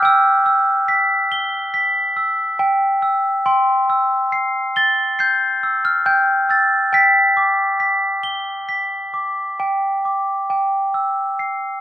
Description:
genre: children's music, lullaby.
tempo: 69 BPM.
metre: 4/4.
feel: rubato.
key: C major.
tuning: A4 = 440 Hz.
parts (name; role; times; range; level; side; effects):
glockenspiel with rubber mallets; solo; 0.0-11.8 s; G5 to G7; -15 LUFS; equal; none.
room: moderate recital hall reverb, RT60 1.6 s.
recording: minimal, uncompressed stereo recording.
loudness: -15 LUFS.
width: side -13 dB against mid.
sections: 0.0-10.5 A section; 10.5-11.8 B section.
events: none.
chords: 0.0 Em; 3.5 C; 6.9 G; 10.5 C.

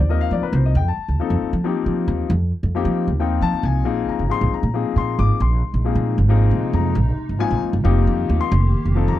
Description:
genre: jazz.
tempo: 271 BPM (eighths).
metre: 7/8.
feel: straight.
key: unclear.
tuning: A4 = 440 Hz.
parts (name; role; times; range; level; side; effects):
clear grand piano; accompaniment; 0.0-9.2 s; F3 to D6; -23 LUFS; left 8 dB; none.
upright bass; bass; 0.0-9.2 s; F1 to F3; -18 LUFS; right 1 dB; none.
hollow soft pad; sustained chords; 5.4-9.2 s; C3 to G4; -27 LUFS; right 2 dB; ensemble chorus.
room: little or no reverb.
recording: dry, close 1970s-style studio recording.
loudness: -17 LUFS.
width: side -13 dB against mid.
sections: 0.0-9.2 A section.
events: none.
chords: 0.0 F9sus4; 3.9 Bb9sus4; 7.8 F9sus4.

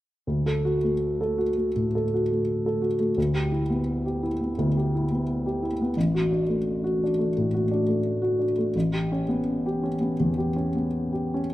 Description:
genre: classical, romantic character piece for solo piano.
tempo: 85 BPM.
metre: 4/4.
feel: uneven beats, rubato.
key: D major.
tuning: A4 = 439 Hz.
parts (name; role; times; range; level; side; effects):
warm baby grand piano; solo; 0.3-11.5 s; A1 to A4; -23 LUFS; equal; none.
room: moderate recital hall reverb, RT60 1.7 s.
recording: close, detailed microphones.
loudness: -23 LUFS.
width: side -15 dB against mid.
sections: 0.3-11.5 A section.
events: none.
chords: 0.3 D; 3.2 Em7/D; 6.0 D/A; 8.8 A9.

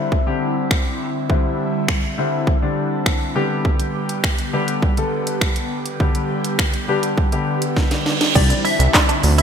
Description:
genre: dance-pop.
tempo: 102 BPM.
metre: 4/4.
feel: straight.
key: C major.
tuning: A4 = 440 Hz.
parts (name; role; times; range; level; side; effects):
warm baby grand piano; accompaniment; 0.0-9.3 s; D3 to A4; -22 LUFS; left 3 dB; wide subtle chorus, sidechain pumping.
airy breathy pad; sustained chords; 0.0-9.4 s; D3 to G4; -26 LUFS; right 1 dB; chorus, phaser, sidechain pumping.
house drum kit; drums; 0.1-9.4 s; crash cymbal, finger snaps, handclaps, hi-hat, kick drum, shaker, snare drum; -18 LUFS; equal; overdrive, gated reverb.
reverse cymbal and downlifter; sound effects; 7.9-9.4 s; none; -26 LUFS; right 6 dB; none.
plucky unison lead; melody; 8.4-9.4 s; D5 to E5; -22 LUFS; right 1 dB; phaser, digital delay.
direct-recorded clean electric guitar; riff; 8.4-9.4 s; C4 to E4; -26 LUFS; right 8 dB; analog chorus.
fat analog bass; bass; 8.4-9.4 s; C2 to D2; -14 LUFS; right 1 dB; sidechain pumping.
room: moderate lush hall reverb, RT60 2.1 s.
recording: bright 1980s-style digital production.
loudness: -17 LUFS.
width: side -7 dB against mid.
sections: 0.0-8.4 A section; 8.4-9.4 B section.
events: drum fill 7.8-8.4; reverse cymbal 7.9-8.4; drop 8.4-9.4.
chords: 0.0 Cadd9; 3.4 G; 8.4 Cadd9.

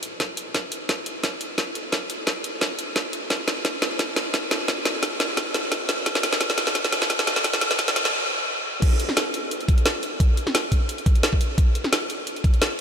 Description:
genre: drum and bass.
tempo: 174 BPM.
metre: 4/4.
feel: swing 54% on 16ths.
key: none.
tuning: none.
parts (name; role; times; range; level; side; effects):
drum and bass drum kit; drums; 0.0-12.7 s; crash cymbal, hi-hat, snare drum; -22 LUFS; equal; overdrive.
electronic kick drum; drums; 0.2-12.5 s; none; -20 LUFS; equal; overdrive, high-pass filter on kick.
room: wet huge ambient reverb, RT60 8.1 s.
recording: dreamy mix soaked in reverb, high-pass filter.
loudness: -21 LUFS.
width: side -8 dB against mid.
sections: 0.0-8.8 A section; 8.8-12.8 B section.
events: build-up 0.0-8.8; drum fill 0.0-8.1; stop 8.1-8.8; drop 8.8-12.8.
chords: none.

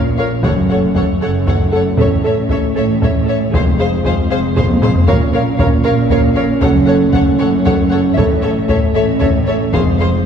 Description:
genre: cinematic, epic orchestral film score.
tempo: 78 BPM (dotted quarters).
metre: 6/8.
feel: straight.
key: unclear.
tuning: A4 = 441 Hz.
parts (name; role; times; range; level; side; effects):
dark French horn section; sustained chords; 0.0-10.3 s; Ab3 to Db4; -18 LUFS; equal; none.
dark symphonic cello section; bass; 0.0-10.3 s; F2 to Bb2; -20 LUFS; right 2 dB; none.
rich symphonic double bass section; bass; 0.0-10.3 s; F1 to Bb1; -20 LUFS; right 2 dB; none.
dark symphonic violin section; melody; 0.2-10.1 s; E5 to F#5; -26 LUFS; left 5 dB; none.
clear symphonic violin section; second line; 0.2-10.1 s; C5 to Db5; -23 LUFS; left 2 dB; none.
rich studio viola section; accompaniment; 0.2-10.1 s; Ab4 to Bb4; -21 LUFS; right 2 dB; none.
taiko ensemble; drums; 0.4-10.2 s; none; -17 LUFS; equal; none.
room: wet scoring stage reverb, RT60 1.7 s.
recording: heard from further back in the room.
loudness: -11 LUFS.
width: side -7 dB against mid.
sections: 0.0-10.3 A section.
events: drum fill 4.7-5.1.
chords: 0.4 F#m; 2.0 A; 3.5 Fm; 5.1 Bbm; 6.6 F#m; 8.2 A; 9.7 Fm.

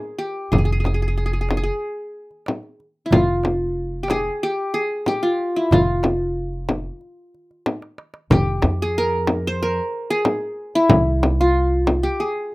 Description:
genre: Arabic maqam ensemble.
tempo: 92 BPM.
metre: 4/4.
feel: straight.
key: F maqam nahawand.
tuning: A4 = 442 Hz.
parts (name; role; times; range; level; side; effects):
qanun; melody; 0.0-12.5 s; E4 to C5; -21 LUFS; equal; none.
darbuka; percussion; 0.0-12.5 s; none; -27 LUFS; right 2 dB; none.
upright bass; bass; 0.5-12.1 s; F1 to F2; -22 LUFS; equal; none.
frame drum; percussion; 0.5-12.0 s; none; -19 LUFS; left 1 dB; none.
room: light reverb.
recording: rough home demo mix.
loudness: -18 LUFS.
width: side -21 dB against mid.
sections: 0.0-8.3 A section; 8.3-12.5 B section.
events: drum fill 7.7-8.3.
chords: none.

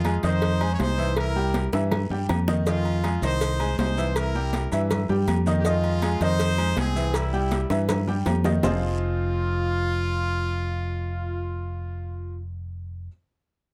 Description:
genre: latin, salsa.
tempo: 161 BPM.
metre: 4/4.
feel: straight.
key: F minor.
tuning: A4 = 440 Hz.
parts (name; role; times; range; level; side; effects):
brilliant horn section; melody; 0.0-12.4 s; G3 to Db5; -32 LUFS; equal; none.
bright baby grand piano; accompaniment; 0.0-13.1 s; Eb3 to Ab5; -31 LUFS; equal; none.
fingered electric bass; bass; 0.0-13.1 s; F1 to G2; -28 LUFS; equal; none.
congas; percussion; 0.0-8.7 s; none; -34 LUFS; equal; none.
cowbell and bongos; percussion; 0.0-8.7 s; none; -33 LUFS; equal; none.
agogo bells and timbales; percussion; 0.1-8.7 s; none; -36 LUFS; equal; none.
guiro; percussion; 0.1-8.7 s; none; -48 LUFS; equal; none.
maracas; percussion; 2.7-8.7 s; none; -46 LUFS; equal; none.
room: light reverb.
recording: close, detailed microphones.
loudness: -25 LUFS.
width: mono.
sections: 0.0-8.6 A section; 8.6-11.6 B section.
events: drum fill 1.7-2.7, 7.7-8.6.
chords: 0.0 Fm7; 1.2 C7; 2.7 Fm7; 4.2 C7; 5.7 Fm7; 7.1 C; 8.6 Fm7.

